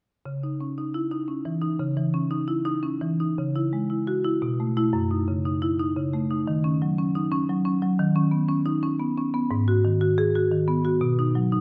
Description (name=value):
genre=classical, contemporary piece for solo marimba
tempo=118 BPM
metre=3/4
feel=rubato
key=C# minor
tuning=A4 = 440 Hz
part: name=marimba with medium hard mallets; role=solo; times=0.3-11.6 s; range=F#2 to G#4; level=-25 LUFS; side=equal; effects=none
room=moderate recital hall reverb, RT60 1.3 s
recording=none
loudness=-25 LUFS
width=mono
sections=0.3-3.4 A section; 3.4-11.6 B section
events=none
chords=0.3 C#madd9; 3.4 C#m; 4.4 B7sus4; 4.9 F#m6; 6.5 D#m7; 8.0 Badd9/D#; 9.5 G#m7; 11.0 B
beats=| 0.25 0.77 1.28 | 1.79 2.30 2.82 | 3.37 3.89 4.42 | 4.93 5.45 5.95 | 6.46 6.97 7.48 | 7.99 8.49 8.99 | 9.50 10.01 10.51 | 11.01 11.51